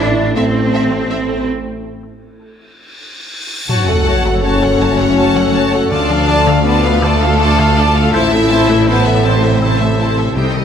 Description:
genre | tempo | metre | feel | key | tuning
cinematic, hybrid orchestral and electronic film score | 54 BPM (dotted quarters) | 6/8 | straight | unclear | A4 = 442 Hz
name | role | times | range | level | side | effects
rich studio violin section | melody | 0.0-10.6 s | Eb5 to A5 | -21 LUFS | left 3 dB | none
rich studio violin section | second line | 0.0-10.6 s | G4 to F#5 | -22 LUFS | left 2 dB | none
clear symphonic viola section | accompaniment | 0.0-10.6 s | Eb4 to F5 | -20 LUFS | right 2 dB | none
mellow French horn section | sustained chords | 0.0-10.6 s | G3 to A4 | -17 LUFS | left 4 dB | none
warbly tape-like pad | sustained chords | 0.0-10.6 s | C3 to Eb5 | -22 LUFS | left 2 dB | chorus, built-in reverb, phaser
clear symphonic double bass section | bass | 0.0-10.6 s | F#1 to D2 | -18 LUFS | right 2 dB | none
warm symphonic cello section | bass | 0.0-10.6 s | D2 to D4 | -20 LUFS | right 2 dB | none
resonant blip pluck | arpeggios | 0.2-10.6 s | C3 to A4 | -23 LUFS | left 2 dB | phaser, tape echo
cymbal swell and sub drop | sound effects | 2.9-5.9 s | none | -20 LUFS | equal | none
room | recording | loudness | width
wet scoring stage reverb, RT60 1.5 s | none | -11 LUFS | side -8 dB against mid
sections
0.0-3.7 A section; 3.7-10.6 B section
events
break 1.5-3.7; cymbal swell 2.9-3.7; impact 3.7-5.9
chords
0.0 Am; 1.5 N.C.; 3.7 F#m; 5.9 Dm; 8.1 Am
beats
0.36 | 1.47 2.58 | 3.69 4.80 | 5.92 7.03 | 8.14 9.25 | 10.36

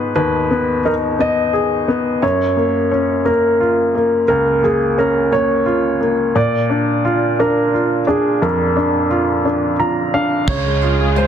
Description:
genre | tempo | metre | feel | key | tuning
six-eight pop ballad | 58 BPM (dotted quarters) | 6/8 | straight | unclear | A4 = 437 Hz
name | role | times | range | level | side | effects
warm concert grand piano | melody | 0.0-11.3 s | Ab4 to Eb5 | -18 LUFS | right 2 dB | none
clear upright piano | accompaniment | 0.0-11.3 s | Db2 to Bb5 | -16 LUFS | left 2 dB | none
rich studio string section | sustained chords | 10.5-11.3 s | Db3 to F4 | -25 LUFS | equal | none
fingered electric bass | bass | 10.5-11.3 s | Db2 | -18 LUFS | right 1 dB | none
soft brush drum kit | drums | 10.5-11.3 s | crash cymbal, hi-hat, kick drum | -22 LUFS | right 2 dB | none
room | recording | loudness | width
light reverb, small room ambience | dense, heavily limited modern master | -14 LUFS | side -8 dB against mid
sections
0.0-10.5 A section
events
upright piano fill 9.4-10.5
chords
0.0 Abm; 2.2 Gbmaj7; 6.4 Bb; 10.5 Db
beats
| 0.16 1.19 | 2.22 3.26 | 4.29 5.32 | 6.36 7.39 | 8.42 9.45 | 10.48

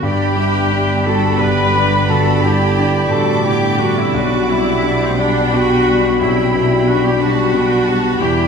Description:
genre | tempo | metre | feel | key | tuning
classical, romantic movement for piano and orchestra | 58 BPM (dotted quarters) | 12/8 | rubato | G major | A4 = 440 Hz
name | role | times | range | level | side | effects
rich chamber violin section | melody | 0.0-8.5 s | B5 to D6 | -29 LUFS | left 4 dB | none
warm concert grand piano | melody | 0.0-8.5 s | B1 to D4 | -17 LUFS | left 3 dB | none
clear clarinet | second line | 0.0-8.5 s | A3 to G4 | -26 LUFS | equal | none
clear oboe | second line | 0.0-8.5 s | B5 | -25 LUFS | right 2 dB | none
mellow hollow silver concert flute | second line | 0.0-8.5 s | C5 to B5 | -26 LUFS | left 3 dB | none
rich symphonic violin section | second line | 0.0-8.5 s | D5 to A5 | -26 LUFS | left 2 dB | none
bright studio viola section | accompaniment | 0.0-8.5 s | C4 to B4 | -19 LUFS | right 1 dB | none
mellow bassoon | accompaniment | 0.0-8.5 s | G3 | -25 LUFS | right 4 dB | none
mellow French horn section | sustained chords | 0.0-8.5 s | G3 to E4 | -26 LUFS | left 2 dB | none
clear studio cello section | bass | 0.0-8.5 s | E2 to B2 | -25 LUFS | right 4 dB | none
rich chamber double bass section | bass | 0.0-8.5 s | E1 to B1 | -24 LUFS | right 2 dB | none
room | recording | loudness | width
wet scoring stage reverb, RT60 1.9 s | minimal, uncompressed stereo recording | -12 LUFS | side -6 dB against mid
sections
0.0-8.5 A section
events
none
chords
0.0 G; 4.1 G/B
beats
| 0.02 1.06 2.09 3.11 | 4.14 5.19 6.22 7.21 | 8.20

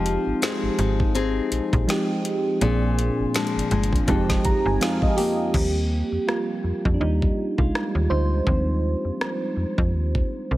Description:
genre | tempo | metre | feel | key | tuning
contemporary R&B | 82 BPM | 4/4 | swing 58% on 16ths | unclear | A4 = 439 Hz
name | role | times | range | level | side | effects
mellow FM electric piano | accompaniment | 0.0-10.6 s | F3 to Bb5 | -24 LUFS | right 1 dB | chorus
nylon-string guitar | arpeggios | 0.0-5.6 s | F2 to Ab4 | -27 LUFS | left 5 dB | tape echo
slap-like FM bass | bass | 0.0-10.6 s | F1 to F2 | -24 LUFS | equal | none
smooth R&B drum kit | drums | 0.1-10.3 s | crash cymbal, hi-hat, kick drum, rim click, snare drum | -26 LUFS | equal | none
room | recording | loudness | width
little or no reverb | heavily compressed radio sound | -20 LUFS | side -16 dB against mid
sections
0.0-5.5 A section; 5.5-10.6 B section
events
FM electric piano fill 4.1-5.5; FM electric piano solo 5.5-10.6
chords
0.0 Fm7; 2.6 Bb7; 4.1 Fm7; 5.5 Eb6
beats
0.42 1.15 1.88 | 2.61 3.35 4.08 4.81 | 5.54 6.27 7.00 7.74 | 8.47 9.20 9.93

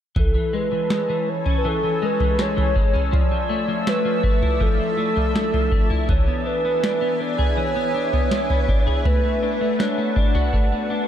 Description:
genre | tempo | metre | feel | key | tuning
dream pop | 81 BPM | 4/4 | straight | A major | A4 = 439 Hz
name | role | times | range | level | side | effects
granular cloud pad | sustained chords | 0.7-11.1 s | B4 to E6 | -27 LUFS | equal | built-in reverb, shimmer reverb
warbly nostalgic lead | melody | 0.2-11.1 s | A4 to D5 | -24 LUFS | right 1 dB | chorus, tape echo, shimmer reverb
clean electric guitar | arpeggios | 0.2-11.1 s | E3 to G#4 | -25 LUFS | left 4 dB | ensemble chorus, tape echo, shimmer reverb
booming analog drum machine | drums | 0.2-10.7 s | kick drum, snare drum, toms | -20 LUFS | equal | overdrive
room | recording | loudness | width
light reverb | dark, warm production | -18 LUFS | side -10 dB against mid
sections
0.2-11.1 A section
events
none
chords
0.2 Amaj7; 3.1 Dmadd9; 6.1 E7; 9.1 Bm7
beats
| 0.17 0.91 1.65 2.39 | 3.13 3.87 4.62 5.36 | 6.10 6.84 7.58 8.32 | 9.06 9.80 10.54

